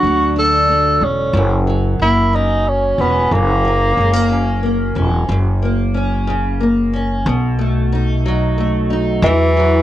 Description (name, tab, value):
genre	six-eight pop ballad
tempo	61 BPM (dotted quarters)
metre	6/8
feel	straight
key	unclear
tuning	A4 = 441 Hz
part	warm tenor saxophone	melody	0.0-4.6, 9.2-9.8 s	E3 to A4	-15 LUFS	equal	none
part	picked acoustic archtop guitar	accompaniment	0.0-9.8 s	F#2 to D#4	-18 LUFS	equal	double-tracked left and right
part	upright bass	bass	0.0-9.8 s	E1 to E2	-17 LUFS	equal	none
room	small room ambience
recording	home recording on cassette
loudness	-13 LUFS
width	side -13 dB against mid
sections	0.0-5.3 A section; 5.3-9.2 B section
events	none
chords	0.0 D; 1.3 F#; 7.3 B7; 9.2 Esus2